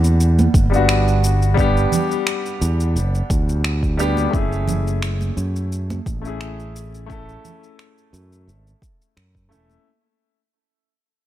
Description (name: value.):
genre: sunset chillout.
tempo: 87 BPM.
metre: 4/4.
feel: swing 53% on 16ths.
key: unclear.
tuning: A4 = 441 Hz.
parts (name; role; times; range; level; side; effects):
clear baby grand piano; accompaniment; 0.0-9.9 s; G3 to A4; -23 LUFS; left 2 dB; auto-pan, ping-pong delay.
Celtic harp; arpeggios; 0.0-1.4 s; none; barely audible; none; none.
modern bright fingered electric bass; bass; 0.0-9.8 s; E1 to F#2; -19 LUFS; equal; none.
electronic shaker and finger snaps; drums; 0.0-9.8 s; none; -26 LUFS; equal; overdrive.
congas; percussion; 0.4-9.8 s; none; -26 LUFS; right 4 dB; none.
electronic kick drum; drums; 0.5-9.5 s; none; -20 LUFS; equal; overdrive.
room: small room ambience.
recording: none.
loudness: -16 LUFS.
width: side -13 dB against mid.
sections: 0.0-9.8 A section.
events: fade-out 0.0-9.8.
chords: 0.0 Em9; 4.3 F#m9.